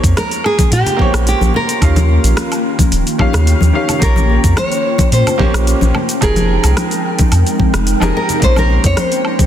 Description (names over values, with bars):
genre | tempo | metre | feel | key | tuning
sunset chillout | 109 BPM | 4/4 | straight | Bb dorian | A4 = 440 Hz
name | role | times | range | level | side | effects
clear baby grand piano | accompaniment | 0.0-9.5 s | Eb3 to F5 | -21 LUFS | moving between left 3 dB and right 5 dB | auto-pan, digital delay
ethereal airy pad | sustained chords | 0.0-9.5 s | Eb3 to C6 | -20 LUFS | left 1 dB | ensemble chorus, built-in reverb
round analog bass | bass | 0.0-8.9 s | Eb1 to Bb2 | -13 LUFS | equal | none
deep house drum kit | drums | 0.0-9.5 s | cabasa, hi-hat, rim click, woodblock | -22 LUFS | equal | soft clipping on snare
electronic kick drum | drums | 0.0-9.5 s | none | -14 LUFS | equal | none
nylon-string guitar | melody | 0.2-9.5 s | G4 to Db5 | -18 LUFS | equal | digital delay
congas and bongos | percussion | 0.2-9.5 s | none | -22 LUFS | left 4 dB | none
room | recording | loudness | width
light reverb, studio reverb | dense, heavily limited modern master | -11 LUFS | side -10 dB against mid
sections
0.0-9.5 A section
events
none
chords
0.0 Bbm69; 1.8 Eb9; 4.0 Bbm69; 5.9 Fm11; 8.4 Bbm69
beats
0.17 0.72 1.27 | 1.82 2.37 2.92 3.47 | 4.02 4.57 5.12 5.67 | 6.22 6.77 7.32 7.87 | 8.42 8.97